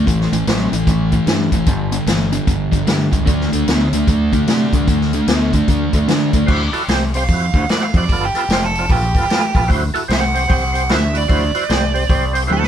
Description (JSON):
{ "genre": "blues rock power trio and southern rock", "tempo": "150 BPM", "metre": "4/4", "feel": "swing 63% on 8ths", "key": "D mixolydian", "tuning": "A4 = 440 Hz", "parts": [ { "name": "fuzz guitar", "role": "riff", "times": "0.0-6.5 s", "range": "G2 to B3", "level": "-17 LUFS", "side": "equal", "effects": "distortion" }, { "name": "growling fingered electric bass", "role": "bass", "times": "0.0-12.7 s", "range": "F1 to D3", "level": "-20 LUFS", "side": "equal", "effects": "overdrive" }, { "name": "vintage drum kit", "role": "drums", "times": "0.1-12.7 s", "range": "crash cymbal, hi-hat, kick drum, snare drum, toms", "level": "-18 LUFS", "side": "equal", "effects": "none" }, { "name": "overdriven tonewheel organ", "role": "sustained chords", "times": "6.5-12.6 s", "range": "B3 to D5", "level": "-21 LUFS", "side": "right 2 dB", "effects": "slow rotary speaker, chorus vibrato" }, { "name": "nasal lead guitar with a parked wah", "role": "second line", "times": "7.2-12.7 s", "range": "G4 to F#5", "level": "-20 LUFS", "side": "right 3 dB", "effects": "overdrive" } ], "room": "moderate studio reverb, RT60 0.5 s", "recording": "band playing live in one room, faint mains hum", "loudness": "-14 LUFS", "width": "side -9 dB against mid", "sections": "0.0-6.5 A section; 6.5-12.7 B section", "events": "lead electric guitar solo 6.5-12.7; drum fill 12.5", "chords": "0.1 A5; 1.7 G5; 3.3 D5; 6.5 D7; 6.9 C5; 7.3 D7; 8.1 G7; 8.5 F5; 8.9 G7; 9.7 D7; 10.1 C5; 10.9 D7; 11.7 C5", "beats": "| 0.07 0.47 0.87 1.27 | 1.67 2.08 2.48 2.88 | 3.28 3.68 4.08 4.48 | 4.88 5.29 5.69 6.09 | 6.49 6.89 7.29 7.69 | 8.10 8.50 8.90 9.30 | 9.70 10.10 10.50 10.90 | 11.30 11.70 12.10 12.50" }